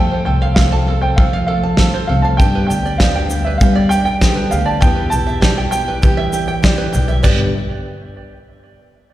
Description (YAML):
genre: indie folk with a building arrangement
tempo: 99 BPM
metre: 4/4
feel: straight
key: G mixolydian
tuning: A4 = 440 Hz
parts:
  - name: warm upright piano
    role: melody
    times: 0.0-6.6 s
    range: E5 to A5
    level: -21 LUFS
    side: right 2 dB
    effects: slapback echo, tape echo
  - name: felt-muted upright piano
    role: accompaniment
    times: 0.0-7.5 s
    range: F1 to D5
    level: -28 LUFS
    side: equal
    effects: slapback echo
  - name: fingerpicked steel-string acoustic guitar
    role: accompaniment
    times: 0.0-2.4 s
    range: F2 to F4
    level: -24 LUFS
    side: left 2 dB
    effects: none
  - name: picked steel-string acoustic guitar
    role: accompaniment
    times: 0.0-7.5 s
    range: G2 to A4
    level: -26 LUFS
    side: left 3 dB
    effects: slapback echo
  - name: open-back banjo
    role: arpeggios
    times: 0.0-7.5 s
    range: G4 to A5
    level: -24 LUFS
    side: right 5 dB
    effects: slapback echo, tape echo
  - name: upright bass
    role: bass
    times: 0.0-7.5 s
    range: G1 to G3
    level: -18 LUFS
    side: equal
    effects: none
  - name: loose indie drum kit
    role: drums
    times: 0.6-7.4 s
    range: crash cymbal, kick drum, snare drum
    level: -14 LUFS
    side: equal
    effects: none
  - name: egg shaker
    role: percussion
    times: 2.4-7.5 s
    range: none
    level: -34 LUFS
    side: left 3 dB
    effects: none
room: light reverb, studio reverb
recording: live gig heard through the venue's PA, recital hall reverb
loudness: -13 LUFS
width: side -14 dB against mid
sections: 0.0-7.3 A section; 7.3-9.1 B section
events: none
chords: 0.0 F; 2.4 G; 4.8 Em; 7.3 G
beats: 0.58 1.18 1.79 | 2.40 3.01 3.61 4.22 | 4.83 5.43 6.04 6.64 | 7.25